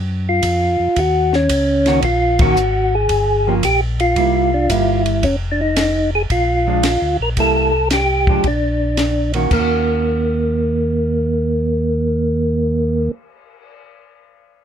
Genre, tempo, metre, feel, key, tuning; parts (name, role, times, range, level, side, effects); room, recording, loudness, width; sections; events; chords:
soul jazz organ trio; 112 BPM; 4/4; swing 68% on 8ths; Eb dorian; A4 = 441 Hz
mellow tonewheel organ; bass; 0.0-13.1 s; F1 to Gb2; -20 LUFS; equal; chorus vibrato, slow rotary speaker
percussive tonewheel organ; melody; 0.3-13.1 s; Bb3 to Bb4; -16 LUFS; equal; slow rotary speaker
compact cocktail drum kit; drums; 0.4-13.7 s; crash cymbal, cymbal swell, hi-hat, kick drum, ride cymbal, snare drum; -22 LUFS; equal
hollow-body jazz guitar; accompaniment; 1.9-13.2 s; Eb3 to Gb4; -21 LUFS; right 3 dB
little or no reverb; close, detailed microphones; -14 LUFS; side -8 dB against mid
0.0-5.2 A section; 5.2-9.5 B section; 9.5-13.8 C section
band accent 2.3
0.0 Bb5 (rootless); 1.0 Ebm7; 3.1 Gm7b5; 4.2 C7; 5.2 F7(no3); 6.3 Bb7; 7.4 C7; 8.4 Bb; 9.5 Ebm7